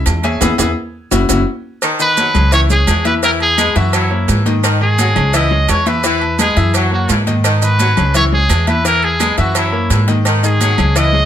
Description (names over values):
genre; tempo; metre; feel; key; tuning
latin, salsa; 171 BPM; 4/4; straight; G# minor; A4 = 440 Hz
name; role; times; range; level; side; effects
clear grand piano; accompaniment; 0.0-11.3 s; D#3 to G#5; -19 LUFS; left 4 dB; none
upright bass; bass; 0.0-11.3 s; F#1 to G#2; -15 LUFS; right 1 dB; none
congas; percussion; 0.1-11.3 s; none; -24 LUFS; equal; none
cowbell; percussion; 0.1-11.1 s; none; -26 LUFS; left 1 dB; none
maracas; percussion; 0.1-11.1 s; none; -23 LUFS; right 9 dB; none
timbales and agogo bells; percussion; 0.1-11.1 s; none; -24 LUFS; right 6 dB; none
clear saxophone section; second line; 1.8-11.1 s; D#3 to G#3; -21 LUFS; left 1 dB; none
bright trumpet; melody; 2.0-11.3 s; E4 to D#5; -16 LUFS; equal; plate reverb
room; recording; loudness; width
moderate small room reverb, RT60 0.5 s; none; -11 LUFS; side -10 dB against mid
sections
0.0-1.8 A section; 1.8-11.3 B section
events
grand piano solo 0.0-1.8; band accent 0.4-1.8; drum fill 0.9-1.8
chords
0.4 E; 1.1 F#5; 1.8 G#m; 2.5 C#m; 3.2 E; 3.9 F#7; 4.6 G#5; 5.3 C#m; 6.0 E; 6.7 F#7; 7.4 G#m; 8.1 C#m; 8.9 E; 9.6 F#7; 10.3 G#5